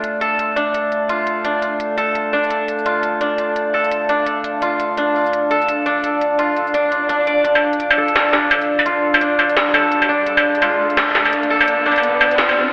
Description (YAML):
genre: half-time drum and bass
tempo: 170 BPM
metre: 4/4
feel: swing 60% on 16ths, half-time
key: D minor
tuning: A4 = 440 Hz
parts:
  - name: dark analog pad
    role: sustained chords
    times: 0.0-12.7 s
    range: D4 to A5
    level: -24 LUFS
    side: equal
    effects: chorus
  - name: koto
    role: arpeggios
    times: 0.0-12.7 s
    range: D4 to D5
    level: -20 LUFS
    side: equal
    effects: low-pass filter, diffuse ambient delay
  - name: industrial drum kit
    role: drums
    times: 0.0-12.5 s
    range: hi-hat, shaker, snare drum, struck metal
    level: -19 LUFS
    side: equal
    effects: none
  - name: metallic inharmonic drone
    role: texture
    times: 0.0-7.5 s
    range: A3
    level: -32 LUFS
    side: equal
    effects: chorus, built-in reverb
  - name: swell and riser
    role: sound effects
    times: 6.9-12.7 s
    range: none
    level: -29 LUFS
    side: equal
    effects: none
room: wet lush hall reverb, RT60 1.7 s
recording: dreamy mix soaked in reverb, telephone sound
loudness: -17 LUFS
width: mono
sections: 0.0-7.4 A section; 7.4-12.7 B section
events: swell 6.9-7.4; build-up 7.4-12.7; riser 8.7-12.7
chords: 0.0 Dm